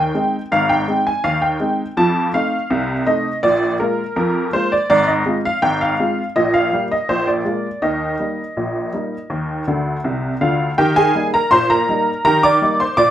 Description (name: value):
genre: ragtime piano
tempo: 82 BPM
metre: 2/4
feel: straight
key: Eb major from 4.9 s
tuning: A4 = 440 Hz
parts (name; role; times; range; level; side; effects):
- honky-tonk upright piano; solo; 0.0-13.1 s; Ab1 to D6; -15 LUFS; equal; none
room: wet studio reverb, RT60 0.5 s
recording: rough home demo mix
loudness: -15 LUFS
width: side -11 dB against mid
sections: 0.0-10.8 A section; 10.8-13.1 B section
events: honky-tonk piano fill 9.7-10.8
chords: 0.0 Ab; 2.0 F7; 3.4 Bb5; 4.9 Fm/Ab; 6.4 Ebadd9/Bb; 7.1 Bb7; 7.8 Eb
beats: | 0.52 1.25 | 1.98 2.71 | 3.44 4.17 | 4.89 5.62 | 6.35 7.08 | 7.82 8.56 | 9.30 10.04 | 10.78 11.52 | 12.25 12.98